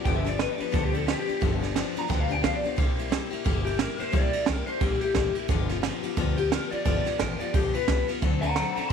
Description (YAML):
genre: rockabilly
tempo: 176 BPM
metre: 4/4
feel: swing 60% on 8ths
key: G mixolydian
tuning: A4 = 440 Hz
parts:
  - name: electric guitar through a small old amp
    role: melody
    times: 0.0-8.9 s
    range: G4 to C6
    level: -29 LUFS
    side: left 3 dB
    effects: lush chorus, tape echo
  - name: picked steel-string acoustic guitar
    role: accompaniment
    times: 0.0-8.9 s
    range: G2 to A4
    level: -31 LUFS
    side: left 12 dB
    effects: none
  - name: upright bass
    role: bass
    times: 0.1-8.9 s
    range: G1 to D2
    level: -30 LUFS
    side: equal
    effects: none
  - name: jazz brush drum kit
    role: drums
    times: 0.1-8.9 s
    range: kick drum, ride cymbal, snare drum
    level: -28 LUFS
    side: right 4 dB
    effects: none
room: light reverb, small room ambience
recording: 1960s-style stereo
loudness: -24 LUFS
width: side -7 dB against mid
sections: 0.0-8.9 A section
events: none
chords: 0.0 G7; 2.8 C7; 5.5 G7; 8.2 D7